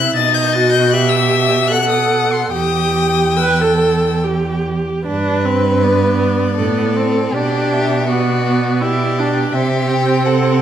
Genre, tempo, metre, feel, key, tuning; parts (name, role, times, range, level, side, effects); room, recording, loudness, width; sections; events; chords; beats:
classical, slow romantic movement for string quartet; 70-84 BPM; 3/4; rubato; E minor, G major from 5.1 s; A4 = 440 Hz
rich violin; melody; 0.0-10.6 s; B4 to A6; -21 LUFS; left 10 dB
warm violin; second line; 0.0-10.6 s; F#4 to G5; -19 LUFS; left 2 dB
rich viola; accompaniment; 0.0-10.6 s; B3 to B4; -18 LUFS; right 2 dB
rich cello; bass; 0.0-10.6 s; E2 to C3; -18 LUFS; right 4 dB
wet recital hall reverb, RT60 1.4 s; -13 LUFS; side -10 dB against mid
0.0-5.1 A section; 5.1-10.6 B section
0.2 B; 0.9 Em/B; 1.7 B7; 2.5 Em; 5.1 G; 7.3 G/B; 9.5 C
| 0.16 0.93 1.71 | 2.53 3.38 4.23 | 5.05 5.84 6.59 | 7.34 8.08 8.81 | 9.54 10.25